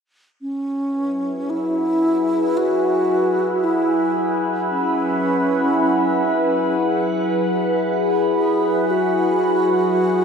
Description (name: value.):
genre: ambient.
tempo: free time.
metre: none.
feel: none.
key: unclear.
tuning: A4 = 437 Hz.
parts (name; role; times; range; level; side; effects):
mellow hollow alto flute; melody; 0.4-10.2 s; C#4 to G#4; -20 LUFS; right 1 dB; shimmer reverb, analog delay.
evolving wavetable pad; sustained chords; 1.2-10.2 s; F#3 to F#5; -19 LUFS; left 1 dB; phaser, built-in reverb, shimmer reverb.
analog drone; drone; 1.5-10.2 s; F#3; -37 LUFS; left 2 dB; none.
room: wet plate reverb, RT60 3.0 s.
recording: echo-heavy mix.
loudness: -17 LUFS.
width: side -6 dB against mid.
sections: 0.4-10.2 A section.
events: none.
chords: 0.4 F#7sus4.